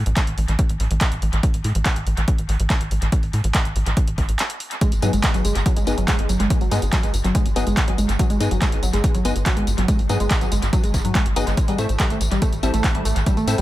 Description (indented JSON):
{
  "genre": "driving peak-time techno",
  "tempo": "142 BPM",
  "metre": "4/4",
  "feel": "straight",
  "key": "unclear",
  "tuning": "A4 = 439 Hz",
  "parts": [
    { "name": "tight sequencer bass", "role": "bass", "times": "0.0-13.6 s", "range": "G#1 to A2", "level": "-22 LUFS", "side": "equal", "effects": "sidechain pumping" },
    { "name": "punchy analog drum machine", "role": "drums", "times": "0.1-13.6 s", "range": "handclaps, hi-hat, tambourine", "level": "-26 LUFS", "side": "equal", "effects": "dub echo" },
    { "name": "electronic kick drum", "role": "drums", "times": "0.2-13.3 s", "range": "none", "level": "-20 LUFS", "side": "equal", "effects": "none" },
    { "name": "tight sequenced synth", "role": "riff", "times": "4.8-13.6 s", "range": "F#3 to A3", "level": "-25 LUFS", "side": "equal", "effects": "chorus, tube saturation, sidechain pumping, dub echo" },
    { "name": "wavetable chord stab", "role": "stabs", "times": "5.0-13.6 s", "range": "B3 to A4", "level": "-28 LUFS", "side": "left 3 dB", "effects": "sidechain pumping, dub echo" }
  ],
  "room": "digital ambience",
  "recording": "echo-heavy mix",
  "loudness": "-18 LUFS",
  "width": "side -15 dB against mid",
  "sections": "0.0-13.6 A section",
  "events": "break 4.4-4.8",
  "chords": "0.0 N.C.; 11.6 Am"
}